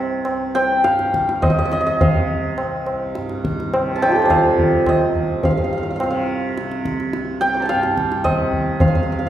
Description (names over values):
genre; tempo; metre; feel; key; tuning
indian classical, Hindustani; 105 BPM; 3/4; straight; C raga bhimpalasi; A4 = 440 Hz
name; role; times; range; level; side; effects
santur; melody; 0.0-9.3 s; D4 to D6; -19 LUFS; right 1 dB; slapback echo
tanpura; drone; 0.0-9.3 s; C2 to C3; -26 LUFS; right 2 dB; none
tabla; percussion; 0.2-9.0 s; none; -20 LUFS; equal; none
room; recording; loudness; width
wet recital hall reverb, RT60 1.6 s; heard from further back in the room; -16 LUFS; side -11 dB against mid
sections
0.0-9.3 A section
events
speeding up 0.0-9.3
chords
none